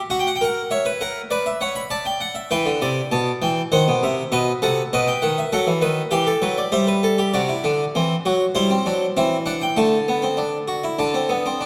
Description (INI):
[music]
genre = classical, baroque-style 3-part fugue for harpsichord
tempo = 99 BPM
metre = 4/4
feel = straight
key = E minor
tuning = A4 = 440 Hz
[part]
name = harpsichord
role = solo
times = 0.1-11.7 s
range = B2 to B5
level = -21 LUFS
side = equal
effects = none
[sound]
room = wet scoring stage reverb, RT60 2.1 s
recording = none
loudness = -21 LUFS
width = mono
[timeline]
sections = 0.0-7.3 A section; 7.3-11.7 B section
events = none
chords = 0.1 F#7; 1.3 Bm; 2.5 Em; 3.7 D#dim7; 4.9 B7; 6.1 Em; 7.3 C; 9.8 D5